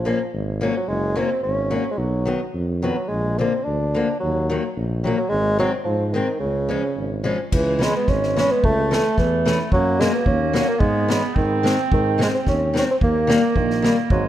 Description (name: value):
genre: alpine folk, alpine dance band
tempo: 109 BPM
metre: 2/4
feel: swing 53% on 8ths, rubato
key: Db major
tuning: A4 = 440 Hz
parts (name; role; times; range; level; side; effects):
- dark bassoon; melody; 0.0-14.2 s; Db3 to D4; -22 LUFS; right 1 dB; none
- warm tuba; bass; 0.0-14.3 s; Gb1 to G#2; -25 LUFS; equal; none
- fingerpicked acoustic archtop guitar; accompaniment; 0.1-14.0 s; D3 to Db4; -25 LUFS; left 4 dB; none
- clear clarinet; second line; 7.5-14.3 s; G#3 to B#3; -25 LUFS; right 6 dB; tape echo
- street-band drum kit; drums; 7.5-14.2 s; crash cymbal, kick drum, snare drum; -23 LUFS; equal; none
room: light reverb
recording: dark, warm production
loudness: -18 LUFS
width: side -12 dB against mid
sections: 0.0-7.5 A section; 7.5-14.3 B section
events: none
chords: 0.0 Bbm; 0.9 Gb; 2.0 Cb; 3.1 Bb; 4.2 Ebm; 5.3 Ab; 6.4 Db; 7.5 C#m; 8.6 A/C#; 9.7 F#; 10.8 C#m/G#; 11.4 G#; 13.0 D#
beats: 0.33 | 0.88 1.43 | 1.98 2.54 | 3.10 3.66 | 4.21 4.76 | 5.31 5.86 | 6.41 6.96 | 7.52 8.08 | 8.63 9.18 | 9.71 10.26 | 10.80 11.35 | 11.91 12.46 | 13.01 13.55 | 14.10